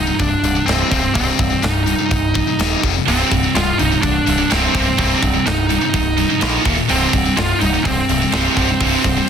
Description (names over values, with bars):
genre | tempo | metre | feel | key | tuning
heavy metal | 126 BPM | 4/4 | straight | C minor | A4 = 441 Hz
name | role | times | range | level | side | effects
high-gain lead guitar | melody | 0.0-9.3 s | C4 to F4 | -19 LUFS | right 4 dB | distortion
high-gain distorted guitar | riff | 0.0-9.3 s | C2 to Bb3 | -20 LUFS | left 8 dB | distortion
growling picked electric bass | bass | 0.0-9.2 s | C1 to Bb1 | -21 LUFS | equal | overdrive
tight metal drum kit | drums | 0.2-9.2 s | hi-hat, kick drum, snare drum | -21 LUFS | equal | soft clipping on kick
heavy high-gain guitar | riff | 3.1-9.3 s | C2 to Bb3 | -21 LUFS | right 14 dB | distortion
room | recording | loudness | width
light reverb | dense, heavily limited modern master, faint mains hum | -14 LUFS | side -8 dB against mid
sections
0.0-9.3 A section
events
none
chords
0.0 Cm; 2.8 F5; 3.1 Cm; 6.4 Bb5; 6.7 Eb5; 6.9 C5